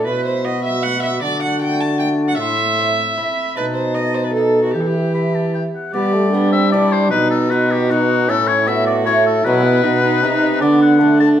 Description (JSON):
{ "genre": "classical, renaissance-style consort dance", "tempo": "154 BPM", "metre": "3/4", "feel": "straight", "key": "unclear", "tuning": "A4 = 441 Hz", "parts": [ { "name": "clear oboe", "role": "melody", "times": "0.0-11.3 s", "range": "F#4 to C6", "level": "-21 LUFS", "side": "left 5 dB", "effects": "none" }, { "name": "warm viola", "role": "second line", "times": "0.0-11.4 s", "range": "D4 to A5", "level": "-20 LUFS", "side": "right 3 dB", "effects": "none" }, { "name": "lute", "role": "accompaniment", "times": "0.0-11.4 s", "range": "A2 to F#4", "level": "-26 LUFS", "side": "right 2 dB", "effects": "none" }, { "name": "mellow bassoon", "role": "accompaniment", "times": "0.0-11.4 s", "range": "F#3 to F#4", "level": "-23 LUFS", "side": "left 2 dB", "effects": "none" }, { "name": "mellow trombone", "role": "bass", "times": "0.0-11.4 s", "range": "A2 to G3", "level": "-18 LUFS", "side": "equal", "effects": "none" } ], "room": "wet stone room reverb, RT60 1.1 s", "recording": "heard from further back in the room", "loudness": "-14 LUFS", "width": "side -10 dB against mid", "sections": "0.0-5.9 A section; 5.9-11.4 A section", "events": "none", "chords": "0.1 Bsus4; 0.4 B5; 1.2 D; 2.4 Am; 3.6 B7; 4.7 Em; 5.9 G; 7.1 B; 8.3 A; 9.5 Bsus4; 9.8 B; 10.6 D" }